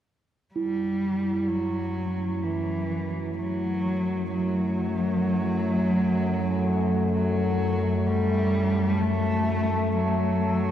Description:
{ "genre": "dark ambient drone", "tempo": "64 BPM", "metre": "4/4", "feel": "straight", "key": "F# phrygian", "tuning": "A4 = 441 Hz", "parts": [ { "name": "dark cello", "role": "melody", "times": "0.5-10.7 s", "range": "E3 to A3", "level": "-26 LUFS", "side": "equal", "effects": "tape echo" }, { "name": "analog drone", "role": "drone", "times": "0.9-10.7 s", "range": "F#2 to A3", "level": "-26 LUFS", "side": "left 1 dB", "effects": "chorus" }, { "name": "bronze singing bowl", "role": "texture", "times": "0.6-10.7 s", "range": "E4", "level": "-34 LUFS", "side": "right 4 dB", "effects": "none" } ], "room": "wet cathedral reverb, RT60 5.9 s", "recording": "dark, warm production", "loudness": "-23 LUFS", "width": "side -10 dB against mid", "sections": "0.6-10.7 A section", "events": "none", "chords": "0.6 F#m" }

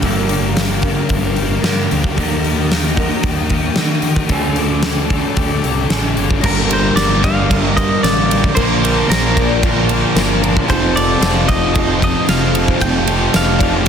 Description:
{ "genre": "rock, shoegaze and dream pop", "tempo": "113 BPM", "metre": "4/4", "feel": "straight", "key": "G minor", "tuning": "A4 = 439 Hz", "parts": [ { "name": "phased analog pad", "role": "sustained chords", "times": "0.0-13.9 s", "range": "A4 to Eb6", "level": "-26 LUFS", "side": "right 1 dB", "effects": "phaser, chorus" }, { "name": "picked twelve-string acoustic guitar", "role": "arpeggios", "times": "0.0-13.9 s", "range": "F4 to D5", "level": "-27 LUFS", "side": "left 13 dB", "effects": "analog chorus, digital delay" }, { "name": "raw garage guitar", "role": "riff", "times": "0.0-13.9 s", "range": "G2 to Bb4", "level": "-22 LUFS", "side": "right 12 dB", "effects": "overdrive, reverse reverb" }, { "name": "thick fuzz guitar", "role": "riff", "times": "0.0-13.9 s", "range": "F2 to Eb4", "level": "-20 LUFS", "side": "left 10 dB", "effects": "distortion, ensemble chorus" }, { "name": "fuzz fingered electric bass", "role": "bass", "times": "0.0-13.9 s", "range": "F1 to Eb3", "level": "-20 LUFS", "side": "equal", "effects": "overdrive" }, { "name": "huge arena drum kit", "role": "drums", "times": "0.0-13.9 s", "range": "crash cymbal, hi-hat, kick drum, ride cymbal, snare drum", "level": "-18 LUFS", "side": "equal", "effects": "none" }, { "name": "sludgy distorted guitar", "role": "riff", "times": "6.4-13.9 s", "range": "F2 to Bb3", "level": "-21 LUFS", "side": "equal", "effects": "overdrive" }, { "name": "direct-recorded clean electric guitar", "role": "melody", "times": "6.5-13.9 s", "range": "Bb4 to G5", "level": "-20 LUFS", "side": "equal", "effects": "spring reverb, digital delay" }, { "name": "tambourine", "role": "percussion", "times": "7.0-13.5 s", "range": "none", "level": "-31 LUFS", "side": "right 9 dB", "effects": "none" } ], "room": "little or no reverb", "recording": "dense, heavily limited modern master", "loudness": "-13 LUFS", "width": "side -7 dB against mid", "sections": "0.0-6.4 A section; 6.4-13.9 A section", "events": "none", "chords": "0.0 Gm7; 2.2 Eb; 4.3 Dsus4; 6.4 Gm7; 10.7 F7" }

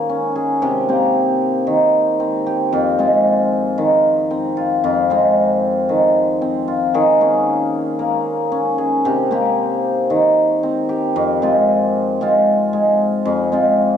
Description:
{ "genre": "folktronica", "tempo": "114 BPM", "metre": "4/4", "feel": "straight", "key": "F minor", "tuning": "A4 = 440 Hz", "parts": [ { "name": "cimbalom", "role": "solo", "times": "0.0-14.0 s", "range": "F2 to Ab4", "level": "-14 LUFS", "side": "equal", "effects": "none" } ], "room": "light reverb", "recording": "dark, warm production", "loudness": "-14 LUFS", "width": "side -8 dB against mid", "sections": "0.0-11.2 A section; 11.2-14.0 B section", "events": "none", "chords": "0.0 Eb7sus4; 0.6 Cm7; 2.7 Fm7; 6.9 Eb7sus4; 9.1 Cm7; 11.2 Fm" }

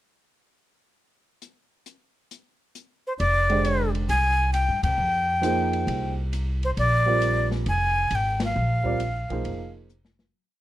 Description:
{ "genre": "modal jazz", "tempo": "134 BPM", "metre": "4/4", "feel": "swing 67% on 8ths", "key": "F dorian", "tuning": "A4 = 440 Hz", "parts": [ { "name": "open jazz drum kit", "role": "drums", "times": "1.4-10.3 s", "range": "hi-hat, kick drum, ride cymbal, snare drum", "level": "-36 LUFS", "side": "left 2 dB", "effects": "none" }, { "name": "breathy bright jazz flute", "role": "melody", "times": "3.1-9.7 s", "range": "C5 to Ab5", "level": "-24 LUFS", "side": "left 1 dB", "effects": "none" }, { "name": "upright bass", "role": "bass", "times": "3.2-10.3 s", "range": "F1 to C3", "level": "-25 LUFS", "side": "equal", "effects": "none" }, { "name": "warm upright piano", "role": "accompaniment", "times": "3.5-9.9 s", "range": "D3 to D5", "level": "-28 LUFS", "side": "right 4 dB", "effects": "none" } ], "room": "light reverb", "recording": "dark, warm production", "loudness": "-21 LUFS", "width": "side -14 dB against mid", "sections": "1.4-3.2 pickup bar; 3.2-10.3 A section", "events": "band accent 4.8, 8.3; fade-out 8.6-10.3; drum fill 9.9-10.3", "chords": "1.4 N.C.; 3.2 F13sus4; 6.8 Bb13sus4" }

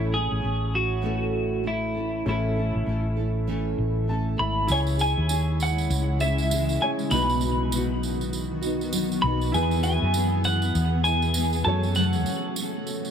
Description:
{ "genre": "acoustic pop", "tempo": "99 BPM", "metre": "4/4", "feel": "swing 60% on 16ths", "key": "unclear", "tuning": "A4 = 439 Hz", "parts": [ { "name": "twelve-string electric guitar", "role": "melody", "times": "0.0-13.1 s", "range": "E4 to B5", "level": "-27 LUFS", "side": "right 1 dB", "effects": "digital delay" }, { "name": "clear upright piano", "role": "accompaniment", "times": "0.0-13.1 s", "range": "A3 to A5", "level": "-35 LUFS", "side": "left 2 dB", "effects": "none" }, { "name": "nylon-string guitar", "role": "accompaniment", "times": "0.0-13.1 s", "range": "F#2 to A4", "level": "-30 LUFS", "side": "left 1 dB", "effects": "double-tracked left and right" }, { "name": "hollow-body short-scale fingered electric bass", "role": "bass", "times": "0.0-12.2 s", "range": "G#1 to F#2", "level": "-26 LUFS", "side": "equal", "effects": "none" }, { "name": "granular cloud pad", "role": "sustained chords", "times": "5.7-13.1 s", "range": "C#3 to G#4", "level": "-32 LUFS", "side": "left 1 dB", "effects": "built-in reverb" }, { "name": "tambourine", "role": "percussion", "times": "4.7-13.1 s", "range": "none", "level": "-35 LUFS", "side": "right 7 dB", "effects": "none" } ], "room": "light reverb", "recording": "none", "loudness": "-22 LUFS", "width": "side -8 dB against mid", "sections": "0.0-4.7 A section; 4.7-13.1 B section", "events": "upright piano fill 3.8-4.7", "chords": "0.0 A; 4.7 C#m; 7.1 B; 9.5 E; 11.7 F#m" }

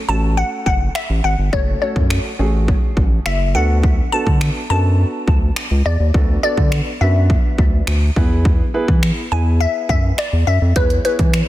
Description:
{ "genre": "dance-pop", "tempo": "104 BPM", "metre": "4/4", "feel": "straight", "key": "unclear", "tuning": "A4 = 440 Hz", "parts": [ { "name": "glassy wavetable pluck", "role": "melody", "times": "0.1-11.5 s", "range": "B4 to A5", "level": "-22 LUFS", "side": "left 2 dB", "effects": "chorus, tape echo" }, { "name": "warm concert grand piano", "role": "accompaniment", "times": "0.1-11.5 s", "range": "A3 to C#5", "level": "-25 LUFS", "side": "right 2 dB", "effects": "sidechain pumping" }, { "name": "round analog bass", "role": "bass", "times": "0.1-11.4 s", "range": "F#1 to E3", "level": "-16 LUFS", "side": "equal", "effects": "sidechain pumping" }, { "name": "house drum kit", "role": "drums", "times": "0.7-11.5 s", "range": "finger snaps, hi-hat, kick drum", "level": "-18 LUFS", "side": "equal", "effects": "overdrive" } ], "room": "digital ambience", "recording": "dense, heavily limited modern master", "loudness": "-14 LUFS", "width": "side -15 dB against mid", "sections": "0.0-11.5 A section", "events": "hi-hats muted 6.1-8.5", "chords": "0.0 F#m; 3.5 D6; 8.2 E" }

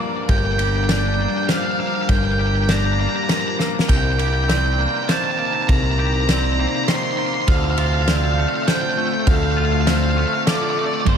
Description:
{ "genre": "post-rock", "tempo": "100 BPM", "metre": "3/4", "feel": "straight", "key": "unclear", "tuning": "A4 = 439 Hz", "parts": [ { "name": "glassy FM pad", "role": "sustained chords", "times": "0.0-11.2 s", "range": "C3 to C5", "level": "-27 LUFS", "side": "left 4 dB", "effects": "ensemble chorus, built-in reverb" }, { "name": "twangy electric guitar", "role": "arpeggios", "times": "0.0-11.2 s", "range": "G2 to G4", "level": "-27 LUFS", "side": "left 5 dB", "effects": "analog chorus, ping-pong delay" }, { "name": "vibraphone with medium mallets", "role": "arpeggios", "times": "0.0-11.2 s", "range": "A4 to D5", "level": "-28 LUFS", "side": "right 4 dB", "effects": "ping-pong delay" }, { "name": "octave-fuzz lead guitar", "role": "melody", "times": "0.3-11.2 s", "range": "C5 to C6", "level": "-23 LUFS", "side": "right 1 dB", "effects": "distortion, ping-pong delay" }, { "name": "growling picked electric bass", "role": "bass", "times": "0.3-11.2 s", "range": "G1 to D2", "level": "-20 LUFS", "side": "equal", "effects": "overdrive" }, { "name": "loose indie drum kit", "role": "drums", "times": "0.3-11.2 s", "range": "kick drum, ride cymbal, snare drum, splash cymbal", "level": "-22 LUFS", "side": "equal", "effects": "none" }, { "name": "fuzz guitar", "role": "riff", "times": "11.1-11.2 s", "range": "G2 to D4", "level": "-20 LUFS", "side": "right 14 dB", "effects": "distortion" } ], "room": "moderate plate reverb, RT60 1.9 s, small room ambience", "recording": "dreamy mix soaked in reverb", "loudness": "-16 LUFS", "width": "side -7 dB against mid", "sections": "0.0-11.1 A section", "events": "drum fill 3.6", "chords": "0.0 Gm7; 3.9 Cm7; 7.5 Dm7" }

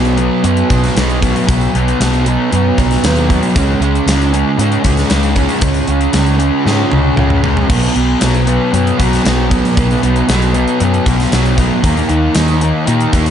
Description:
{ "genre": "rock, shoegaze and dream pop", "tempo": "116 BPM", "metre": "4/4", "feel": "straight", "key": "B major", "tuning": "A4 = 442 Hz", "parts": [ { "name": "fuzz guitar", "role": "riff", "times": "0.0-13.3 s", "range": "B2 to D#4", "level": "-13 LUFS", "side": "equal", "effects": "distortion, wide subtle chorus" }, { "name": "vintage muted fingered electric bass", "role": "bass", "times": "0.0-13.3 s", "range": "B1 to A#2", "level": "-15 LUFS", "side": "equal", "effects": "none" }, { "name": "gated 80s drum kit", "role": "drums", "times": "0.1-13.3 s", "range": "crash cymbal, hi-hat, kick drum, snare drum, toms", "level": "-17 LUFS", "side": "equal", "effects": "none" } ], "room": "light reverb, small room ambience", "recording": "nothing above 10.8 kHz", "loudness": "-11 LUFS", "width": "side -9 dB against mid", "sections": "0.0-7.7 A section; 7.7-13.3 A section", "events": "drum fill 6.7-7.7", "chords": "0.0 B5; 3.6 C#5; 7.7 B5; 11.8 D#5" }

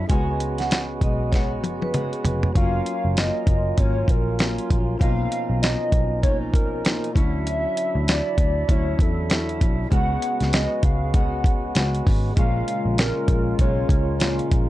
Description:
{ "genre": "indie pop, bedroom pop", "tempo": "98 BPM", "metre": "4/4", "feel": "swing 60% on 16ths", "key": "F# major", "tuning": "A4 = 438 Hz", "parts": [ { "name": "fingerpicked steel-string acoustic guitar", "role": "accompaniment", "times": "0.0-14.7 s", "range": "A#2 to F#4", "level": "-30 LUFS", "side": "left 4 dB", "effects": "wide subtle chorus, vibrato effect" }, { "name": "percussive tonewheel organ", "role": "accompaniment", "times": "0.0-14.7 s", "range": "E#3 to E5", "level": "-31 LUFS", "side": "right 5 dB", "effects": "overdrive, stopped rotary speaker, cassette tape" }, { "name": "vintage muted picked electric bass", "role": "bass", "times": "0.0-14.7 s", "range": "E#1 to E2", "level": "-25 LUFS", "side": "equal", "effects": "none" }, { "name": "vibraphone with medium hard mallets", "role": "second line", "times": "0.1-2.1 s", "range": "B4 to G#5", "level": "-31 LUFS", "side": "right 4 dB", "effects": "lush chorus, analog delay" }, { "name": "dusty soul sampler-style drum kit", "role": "drums", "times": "0.1-14.7 s", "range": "hi-hat, kick drum, snare drum, toms", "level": "-21 LUFS", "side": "equal", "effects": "none" }, { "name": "warbly nostalgic lead", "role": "melody", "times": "2.6-14.5 s", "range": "A4 to F#5", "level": "-28 LUFS", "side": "equal", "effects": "analog chorus, analog delay" }, { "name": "phased analog pad", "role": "sustained chords", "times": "12.4-14.7 s", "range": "C#3 to E#4", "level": "-29 LUFS", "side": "left 1 dB", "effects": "phaser, chorus" } ], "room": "little or no reverb", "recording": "dry, gritty hardware recording, cassette tape", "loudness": "-19 LUFS", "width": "side -15 dB against mid", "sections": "0.0-2.6 A section; 2.6-14.7 B section", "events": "drum fill 1.3-2.6", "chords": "0.1 C#7sus4; 2.6 F#maj7; 5.0 Bmaj9#11; 7.2 Dmaj9; 9.9 C#7sus4; 12.4 A#m7" }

